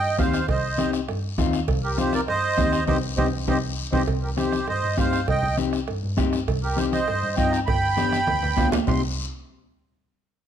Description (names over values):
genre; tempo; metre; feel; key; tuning
latin, cumbia; 200 BPM; 4/4; straight; C minor; A4 = 440 Hz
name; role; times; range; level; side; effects
accordion; melody; 0.0-9.0 s; G4 to C6; -25 LUFS; right 3 dB; light tremolo tuning
rich double bass; bass; 0.0-9.0 s; G1 to G2; -28 LUFS; equal; none
mellow electric guitar; accompaniment; 0.2-9.0 s; B3 to G4; -27 LUFS; left 7 dB; none
bombo; percussion; 0.2-8.9 s; none; -28 LUFS; right 2 dB; none
congas; percussion; 0.2-8.9 s; none; -32 LUFS; right 1 dB; none
guiro; percussion; 0.2-8.9 s; none; -37 LUFS; left 7 dB; none
timbales and cowbell; percussion; 0.2-8.9 s; none; -33 LUFS; right 10 dB; none
room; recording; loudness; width
light reverb; none; -21 LUFS; side -9 dB against mid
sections
0.0-4.1 A section; 4.1-8.9 B section; 8.9-10.1 C section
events
band accent 2.9-4.1; drum fill 8.3-8.9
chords
0.0 Cm; 7.7 G7; 8.9 Cm